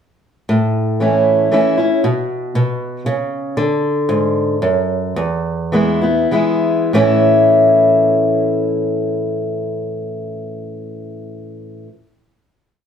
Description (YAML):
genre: country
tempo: 93-116 BPM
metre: 3/4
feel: straight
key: A major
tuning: A4 = 440 Hz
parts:
  - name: picked old ladder-braced acoustic guitar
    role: solo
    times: 0.5-11.9 s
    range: E2 to E4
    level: -14 LUFS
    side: equal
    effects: none
room: wet studio reverb, RT60 0.7 s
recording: heard from further back in the room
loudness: -14 LUFS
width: side -8 dB against mid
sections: 0.5-6.9 interlude; 6.9-10.8 final chord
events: slowing down 3.6-6.9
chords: 0.5 A; 2.0 Bsus2; 3.6 D; 5.2 E; 6.9 A